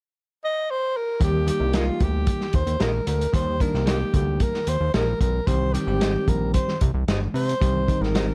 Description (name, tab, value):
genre	uptempo 1960s-style soul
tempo	112 BPM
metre	4/4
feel	straight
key	Eb major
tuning	A4 = 440 Hz
part	breathy alto saxophone	melody	0.4-8.3 s	F4 to Eb5	-29 LUFS	equal	none
part	bell-like tine electric piano	accompaniment	1.2-8.3 s	D3 to G4	-30 LUFS	equal	none
part	fat analog bass	bass	1.2-8.3 s	G1 to C3	-27 LUFS	equal	none
part	vintage drum kit	drums	1.2-8.3 s	hi-hat, kick drum, snare drum	-27 LUFS	equal	none
part	electric guitar through a small old amp	stabs	1.7-8.3 s	G4 to Eb5	-33 LUFS	equal	warbly pitch drift, plate reverb
room	little or no reverb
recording	dark, warm production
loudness	-23 LUFS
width	mono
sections	0.0-1.2 A section; 1.2-8.3 B section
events	none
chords	0.0 N.C.; 1.2 Eb; 5.5 Cm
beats	0.14 0.68 | 1.21 1.74 2.27 2.81 | 3.34 3.87 4.41 4.94 | 5.47 6.01 6.54 7.08 | 7.62 8.15